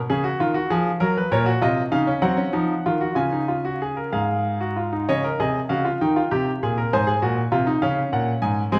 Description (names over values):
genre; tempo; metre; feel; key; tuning
classical, baroque-style 3-part fugue for grand piano; 65 BPM (dotted quarters); 6/8; straight; Db major; A4 = 440 Hz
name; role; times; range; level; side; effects
bright grand piano; solo; 0.1-8.8 s; Ab2 to Ab5; -22 LUFS; equal; none
room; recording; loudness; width
wet recital hall reverb, RT60 1.7 s; dark, warm production, vinyl crackle; -22 LUFS; mono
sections
0.0-5.1 A section; 5.1-8.8 B section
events
none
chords
0.4 Ebm; 1.3 Gb/Bb; 2.2 Gb5; 3.2 Db; 4.1 Ab5; 5.1 Db; 6.0 Eb; 6.9 Ab7; 7.8 Db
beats
0.39 | 1.30 2.23 | 3.17 4.12 | 5.06 5.99 | 6.91 7.82 | 8.73